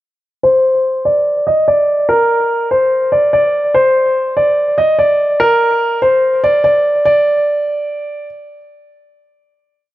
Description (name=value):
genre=hip hop, trap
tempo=145 BPM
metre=4/4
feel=half-time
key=unclear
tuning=A4 = 439 Hz
part: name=dark concert grand piano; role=solo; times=0.4-8.3 s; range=Bb4 to Eb5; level=-11 LUFS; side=equal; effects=low-pass filter, digital delay
room=moderate plate reverb, RT60 2.7 s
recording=nothing above 10.5 kHz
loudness=-11 LUFS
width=side -15 dB against mid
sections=0.4-7.1 breakdown; 7.1-9.9 final note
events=filter sweep on grand piano 0.4-7.1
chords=none